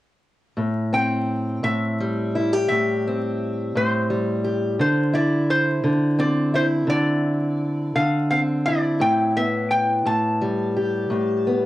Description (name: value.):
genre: acoustic country blues, solo or duo.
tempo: 57 BPM (dotted quarters).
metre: 12/8.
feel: straight.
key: A minor.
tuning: A4 = 440 Hz.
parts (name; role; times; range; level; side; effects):
fingerpicked steel-string acoustic guitar; accompaniment; 0.6-11.7 s; A2 to G4; -21 LUFS; equal; cassette tape.
metal-body resonator slide guitar; melody; 0.9-11.7 s; C5 to A5; -24 LUFS; equal; cassette tape.
room: moderate studio reverb, RT60 0.5 s.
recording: home recording on cassette, vinyl crackle.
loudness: -19 LUFS.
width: side -15 dB against mid.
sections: 0.6-11.7 A section.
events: none.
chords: 0.6 Am7; 4.8 Dsus2; 9.0 Asus2.